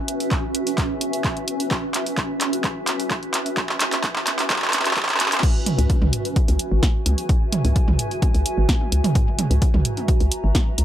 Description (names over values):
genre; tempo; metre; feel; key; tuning
minimal techno; 129 BPM; 4/4; straight; C# dorian; A4 = 440 Hz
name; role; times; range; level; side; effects
granular cloud pad; texture; 0.0-10.8 s; C#4 to A#5; -27 LUFS; equal; built-in reverb, sidechain pumping
punchy analog drum machine; drums; 0.1-10.8 s; crash cymbal, handclaps, hi-hat, snare drum; -23 LUFS; right 1 dB; none
electronic kick drum; drums; 0.3-10.6 s; none; -21 LUFS; equal; none
electronic toms; percussion; 5.7-10.6 s; none; -25 LUFS; right 2 dB; none
hollow knocking FM bass; bass; 5.8-10.8 s; G#1 to C#2; -19 LUFS; equal; sidechain pumping
room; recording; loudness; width
light reverb; high-pass filter; -18 LUFS; side -11 dB against mid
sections
0.0-5.4 A section; 5.4-10.8 B section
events
build-up 0.0-5.4; drum fill 0.0-5.4; filter sweep 0.0-5.4; drop 5.4-10.8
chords
0.0 C#m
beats
0.32 0.78 1.25 | 1.71 2.18 2.64 3.11 | 3.57 4.04 4.50 4.97 | 5.43 5.90 6.36 6.83 | 7.29 7.76 8.22 8.69 | 9.15 9.62 10.08 10.55